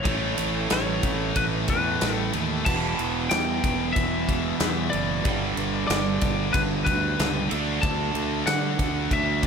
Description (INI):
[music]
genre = hard rock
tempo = 93 BPM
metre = 4/4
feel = straight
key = E dorian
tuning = A4 = 440 Hz
[part]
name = lightly driven lead guitar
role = melody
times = 0.0-9.4 s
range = B4 to A5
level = -29 LUFS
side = left 4 dB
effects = slapback echo
[part]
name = heavy high-gain guitar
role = riff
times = 0.0-9.5 s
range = E2 to D4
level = -31 LUFS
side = right 1 dB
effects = distortion
[part]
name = overdriven electric guitar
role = riff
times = 0.0-9.5 s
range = E2 to D4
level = -30 LUFS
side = right 13 dB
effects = none
[part]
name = tight distorted guitar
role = riff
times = 0.0-9.5 s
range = E2 to D4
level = -32 LUFS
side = left 14 dB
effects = distortion
[part]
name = fuzz fingered electric bass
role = bass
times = 0.1-9.5 s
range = E1 to D3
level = -30 LUFS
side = equal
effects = overdrive
[part]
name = huge arena drum kit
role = drums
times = 0.1-9.5 s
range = crash cymbal, kick drum, ride cymbal, snare drum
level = -27 LUFS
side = equal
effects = none
[sound]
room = light reverb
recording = none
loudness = -22 LUFS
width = side -6 dB against mid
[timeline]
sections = 0.0-9.5 A section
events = none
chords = 0.1 A; 2.7 Em; 5.3 G; 7.5 D